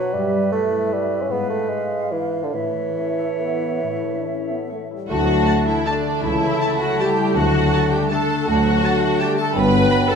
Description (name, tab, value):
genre	classical, orchestral ballroom waltz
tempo	131-177 BPM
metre	3/4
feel	rubato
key	D major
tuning	A4 = 440 Hz
part	clear clarinet	second line	0.0-10.2 s	D4 to C#5	-29 LUFS	left 3 dB	none
part	mellow bassoon	accompaniment	0.0-10.2 s	D3 to C#4	-24 LUFS	right 4 dB	none
part	concert harp	arpeggios	0.0-10.2 s	G2 to E5	-28 LUFS	left 10 dB	none
part	small flute group	second line	0.1-10.2 s	E5 to A5	-28 LUFS	right 1 dB	none
part	mellow French horn section	sustained chords	0.1-10.2 s	D3 to D4	-25 LUFS	left 3 dB	none
part	warm symphonic violin section	second line	5.1-10.2 s	D5 to B5	-29 LUFS	left 3 dB	none
part	rich symphonic viola section	accompaniment	5.1-10.2 s	D4 to B4	-23 LUFS	equal	none
part	clear symphonic double bass section	bass	5.1-9.9 s	G1 to D2	-26 LUFS	right 3 dB	none
part	warm symphonic cello section	bass	5.1-9.8 s	C#2 to G2	-25 LUFS	right 2 dB	none
part	rich symphonic violin section	melody	5.5-10.0 s	A5 to B5	-30 LUFS	left 3 dB	none
part	timpani	percussion	7.4-7.9 s	D3	-25 LUFS	right 2 dB	none
room	wet recital hall reverb, RT60 1.4 s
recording	minimal, uncompressed stereo recording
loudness	-17 LUFS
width	side -6 dB against mid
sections	0.0-5.1 A section; 5.1-10.2 B section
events	none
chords	0.1 Em/G; 1.3 G#dim7; 2.5 A; 5.1 D; 6.2 A/C#; 7.3 D; 9.6 Gmaj7